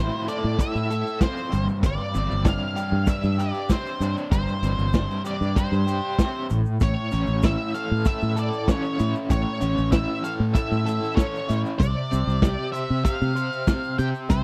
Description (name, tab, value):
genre	psychedelic rock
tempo	96 BPM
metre	4/4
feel	straight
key	unclear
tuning	A4 = 440 Hz
part	octave-fuzz lead guitar	melody	0.0-14.4 s	C5 to G5	-33 LUFS	equal	distortion, slapback echo
part	overdriven semi-hollow guitar	riff	0.0-14.4 s	G2 to C5	-30 LUFS	equal	tremolo
part	fingered electric bass	bass	0.0-14.4 s	G1 to C3	-27 LUFS	equal	none
part	vintage drum kit	drums	0.3-14.4 s	hi-hat, kick drum, snare drum	-24 LUFS	equal	none
part	egg shaker	percussion	0.3-14.4 s	none	-52 LUFS	equal	none
room	little or no reverb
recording	dry, close 1970s-style studio recording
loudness	-24 LUFS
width	mono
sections	0.0-14.4 A section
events	none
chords	0.0 Am; 1.5 Gsus4; 6.5 A; 11.8 Csus2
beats	0.59 1.22 | 1.84 2.46 3.08 3.70 | 4.33 4.95 5.57 6.19 | 6.82 7.44 8.06 8.69 | 9.31 9.93 10.55 11.18 | 11.80 12.43 13.05 13.68 | 14.30